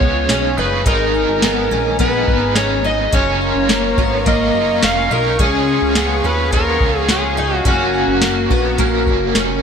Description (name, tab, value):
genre	dream pop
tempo	106 BPM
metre	4/4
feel	straight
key	F# major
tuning	A4 = 438 Hz
part	overdriven slide guitar	melody	0.0-9.3 s	F#4 to E#5	-19 LUFS	equal	digital delay
part	raw garage guitar	accompaniment	0.0-9.6 s	G#2 to A#4	-23 LUFS	right 5 dB	overdrive, tremolo, wide subtle chorus
part	warm analog pad	sustained chords	0.0-9.6 s	G#4 to C#6	-25 LUFS	left 1 dB	chorus
part	fingerpicked twelve-string acoustic guitar	arpeggios	0.0-9.6 s	A#3 to D#4	-20 LUFS	left 2 dB	ensemble chorus, digital delay
part	chorused synth bass	bass	0.0-9.6 s	E#1 to D#2	-22 LUFS	equal	none
part	soft vintage rhythm box	drums	0.0-9.5 s	hi-hat, kick drum, snare drum, tambourine	-18 LUFS	equal	gated reverb
room	moderate plate reverb, RT60 2.1 s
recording	bright 1980s-style digital production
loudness	-13 LUFS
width	side -7 dB against mid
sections	0.0-9.6 A section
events	none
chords	0.0 C#; 0.9 G#madd9; 3.1 F#maj7; 5.4 C#; 7.7 F#maj7